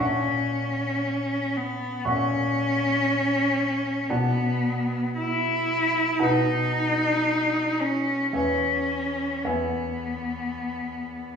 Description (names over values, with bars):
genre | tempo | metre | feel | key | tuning
classical, romantic duo for cello and grand piano | 53-60 BPM | 4/4 | rubato | unclear | A4 = 441 Hz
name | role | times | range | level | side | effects
clear cello | melody | 0.0-11.4 s | B3 to E4 | -24 LUFS | left 1 dB | none
clear concert grand piano | accompaniment | 0.0-11.4 s | E2 to C#6 | -28 LUFS | right 1 dB | none
room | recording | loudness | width
wet recital hall reverb, RT60 1.5 s | recorded in a church or concert hall, small room ambience | -22 LUFS | side -6 dB against mid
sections
0.0-11.4 A section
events
none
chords
0.0 F#7/A#; 4.1 Bm7; 6.2 B7; 8.3 E